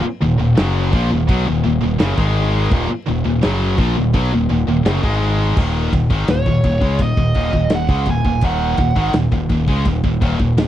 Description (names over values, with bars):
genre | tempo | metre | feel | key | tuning
heavy metal | 84 BPM | 4/4 | straight | Eb minor | A4 = 440 Hz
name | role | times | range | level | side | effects
high-gain distorted guitar | riff | 0.0-10.7 s | Eb2 to Ab3 | -21 LUFS | left 6 dB | distortion
scooped high-gain guitar | riff | 0.0-10.7 s | Eb2 to Ab3 | -22 LUFS | right 5 dB | distortion
tight distorted guitar | riff | 0.0-5.6 s | Eb2 to Ab3 | -22 LUFS | equal | distortion
growling fingered electric bass | bass | 0.0-10.7 s | Eb1 to Db2 | -19 LUFS | equal | overdrive
big rock drum kit | drums | 0.6-10.7 s | crash cymbal, kick drum, ride cymbal, snare drum | -20 LUFS | equal | none
nasal lead guitar with a parked wah | melody | 6.3-9.1 s | Db5 to Ab5 | -21 LUFS | right 4 dB | overdrive, slapback echo
room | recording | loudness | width
little or no reverb | dry, close 1970s-style studio recording, vinyl crackle | -14 LUFS | side -12 dB against mid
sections
0.0-5.6 A section; 5.6-10.7 B section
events
none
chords
0.0 Ebm; 5.6 Eb5